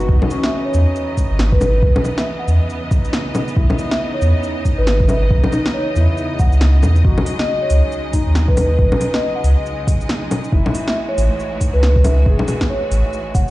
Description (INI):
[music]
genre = future garage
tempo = 138 BPM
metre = 4/4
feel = swing 61% on 16ths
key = C# minor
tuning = A4 = 438 Hz
[part]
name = felt-muted upright piano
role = accompaniment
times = 0.0-13.5 s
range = G#3 to G#4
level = -27 LUFS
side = left 3 dB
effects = sidechain pumping, low-pass filter, analog delay
[part]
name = bright symphonic string section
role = sustained chords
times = 0.0-13.5 s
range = C#3 to D#5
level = -26 LUFS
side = equal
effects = sidechain pumping
[part]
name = warm sub bass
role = bass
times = 0.0-13.5 s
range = F#1 to E2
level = -14 LUFS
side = equal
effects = sidechain pumping
[part]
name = garage drum kit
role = drums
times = 0.0-13.5 s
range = bongos, hi-hat, shaker, snare drum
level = -21 LUFS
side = left 1 dB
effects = studio reverb
[part]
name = backwards swelling texture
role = texture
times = 0.0-13.5 s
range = D#4 to D#5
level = -31 LUFS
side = right 3 dB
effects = built-in reverb
[part]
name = electronic kick drum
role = drums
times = 0.1-13.5 s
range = none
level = -16 LUFS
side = equal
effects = overdrive, studio reverb
[part]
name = marimba with medium mallets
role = melody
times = 0.4-13.5 s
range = B4 to F#5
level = -23 LUFS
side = equal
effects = analog delay
[sound]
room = light reverb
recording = played on a big sound system in a bare room, cassette tape, stone room reverb, nothing above 11.0 kHz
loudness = -14 LUFS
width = side -17 dB against mid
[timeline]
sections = 0.0-13.5 A section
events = none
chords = 0.1 C#m9; 7.0 G#7sus4; 10.5 F#m9